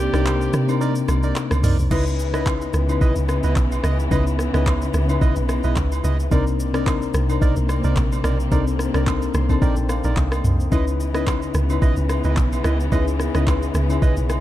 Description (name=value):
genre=amapiano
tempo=109 BPM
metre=4/4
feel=swing 55% on 16ths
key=unclear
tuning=A4 = 440 Hz
part: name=breathy alto saxophone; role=melody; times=0.0-1.4 s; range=G4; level=-28 LUFS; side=right 1 dB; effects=ping-pong delay
part: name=soft electric-piano-like synth keys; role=accompaniment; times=0.0-14.4 s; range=C3 to C6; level=-25 LUFS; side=left 7 dB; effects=chorus
part: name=warm studio string section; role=sustained chords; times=0.0-14.4 s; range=C3 to D5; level=-28 LUFS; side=equal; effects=none
part: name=deep log drum bass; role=bass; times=0.0-14.4 s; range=Bb1 to C3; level=-21 LUFS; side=equal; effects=none
part: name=percussive organ stab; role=stabs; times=0.1-14.2 s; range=Eb4 to D#5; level=-30 LUFS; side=right 5 dB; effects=chorus, ping-pong delay
part: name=smooth R&B drum kit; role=drums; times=0.1-14.4 s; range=crash cymbal, handclaps, hi-hat, kick drum, rim click, shaker, toms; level=-23 LUFS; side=equal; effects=none
part: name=agogo bells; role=percussion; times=0.3-14.4 s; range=none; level=-36 LUFS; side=right 10 dB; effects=none
room=digital ambience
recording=dark, warm production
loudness=-18 LUFS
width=side -14 dB against mid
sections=0.0-1.9 A section; 1.9-14.4 B section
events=break 0.0-1.9; drop 0.0-1.9; synth keys fill 9.1-10.7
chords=0.0 Cm9; 1.9 C#m9; 6.3 Cm9; 10.7 C#m9